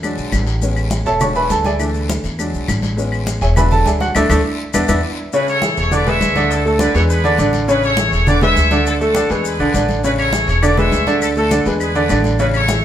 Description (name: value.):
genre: latin, salsa.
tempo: 204 BPM.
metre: 4/4.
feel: straight.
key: unclear.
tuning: A4 = 438 Hz.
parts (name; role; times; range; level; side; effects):
clear concert grand piano; accompaniment; 0.0-12.8 s; C#3 to C#6; -17 LUFS; equal; none.
upright bass; bass; 0.0-12.8 s; E1 to E2; -19 LUFS; equal; none.
claves; percussion; 0.0-5.0, 10.2-12.7 s; none; -28 LUFS; left 6 dB; none.
congas; percussion; 0.0-12.8 s; none; -24 LUFS; left 1 dB; none.
guiro; percussion; 0.0-12.8 s; none; -32 LUFS; left 4 dB; none.
maracas; percussion; 0.0-12.8 s; none; -31 LUFS; left 6 dB; none.
bright trumpet section; melody; 5.3-12.8 s; E4 to E5; -19 LUFS; equal; none.
room: wet stone room reverb, RT60 1.2 s.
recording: band playing live in one room.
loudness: -13 LUFS.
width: side -10 dB against mid.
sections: 0.0-5.3 A section; 5.3-12.8 B section.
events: grand piano solo 0.0-5.3; band accent 4.2-5.3; drum fill 4.9-5.3.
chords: 0.0 E7; 0.6 Amaj7; 1.2 E7; 1.8 Dsus2; 2.4 E7; 3.0 Amaj7; 3.6 E7; 4.2 Dsus2; 4.7 E5; 5.3 Amaj7; 5.9 E7; 6.5 Dsus2; 7.1 E7; 7.7 Amaj7; 8.3 E7; 8.9 Dsus2; 9.4 E7; 10.0 Amaj7; 10.6 E7; 11.2 Dsus2; 11.8 E7.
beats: 0.03 0.33 | 0.62 0.92 1.21 1.50 | 1.80 2.09 2.39 2.68 | 2.98 3.27 3.56 3.86 | 4.15 4.45 4.74 5.04 | 5.33 5.62 5.92 6.21 | 6.51 6.80 7.09 7.39 | 7.68 7.98 8.27 8.57 | 8.86 9.15 9.45 9.74 | 10.04 10.33 10.63 10.92 | 11.22 11.51 11.81 12.10 | 12.39 12.69.